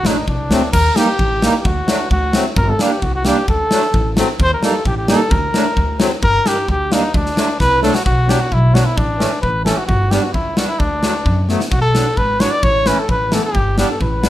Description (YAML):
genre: klezmer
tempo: 131 BPM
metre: 2/4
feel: straight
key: D phrygian dominant, B minor from 8.1 s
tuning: A4 = 439 Hz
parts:
  - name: warm cornet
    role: melody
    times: 0.0-14.3 s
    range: D4 to D5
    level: -18 LUFS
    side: left 1 dB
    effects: plate reverb
  - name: accordion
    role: accompaniment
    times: 0.0-14.3 s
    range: E3 to Eb4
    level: -19 LUFS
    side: equal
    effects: light tremolo tuning
  - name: upright bass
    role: bass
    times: 0.0-14.3 s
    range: G1 to F#2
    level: -19 LUFS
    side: equal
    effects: none
  - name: gated 80s drum kit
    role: drums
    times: 0.0-14.3 s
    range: crash cymbal, kick drum, snare drum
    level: -19 LUFS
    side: left 1 dB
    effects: none
room: moderate studio reverb, RT60 0.5 s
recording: none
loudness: -13 LUFS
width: side -13 dB against mid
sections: 0.7-8.1 A section; 8.1-14.3 B section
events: drum fill 7.6-8.1, 11.5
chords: 0.0 D; 0.7 Eb; 1.7 D; 2.6 Gm; 3.5 D; 4.4 Eb; 5.3 D; 6.2 Gm; 7.1 D; 8.1 Bm; 9.0 A; 9.9 G; 10.8 D; 11.7 Bm; 12.6 A; 13.5 G